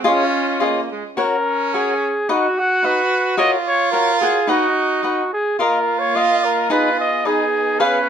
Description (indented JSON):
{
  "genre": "mexican folk, mariachi",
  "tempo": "108 BPM",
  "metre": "2/4",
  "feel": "rubato",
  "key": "F# major",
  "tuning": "A4 = 440 Hz",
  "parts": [
    { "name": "warm trumpet", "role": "second line", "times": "0.0-8.1 s", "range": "Ab3 to F#4", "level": "-21 LUFS", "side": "right 5 dB", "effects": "none" },
    { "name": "cavaquinho", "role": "accompaniment", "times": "0.0-8.0 s", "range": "D#4 to F#5", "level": "-19 LUFS", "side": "left 2 dB", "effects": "none" },
    { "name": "dark studio violin section", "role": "sustained chords", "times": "0.0-1.2, 5.6-8.1 s", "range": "A#3 to Eb5", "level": "-28 LUFS", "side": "right 1 dB", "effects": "none" },
    { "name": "warm trumpet", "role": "melody", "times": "0.1-8.1 s", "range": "F4 to F#5", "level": "-19 LUFS", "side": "equal", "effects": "none" }
  ],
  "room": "moderate studio reverb, RT60 0.6 s",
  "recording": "none",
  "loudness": "-16 LUFS",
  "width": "side -8 dB against mid",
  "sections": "0.0-1.2 A section; 1.2-8.1 B section",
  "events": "none",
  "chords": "0.1 Dbadd9; 1.2 F#; 2.3 B; 3.4 F#; 4.5 B; 5.6 D#sus2; 6.7 G#m"
}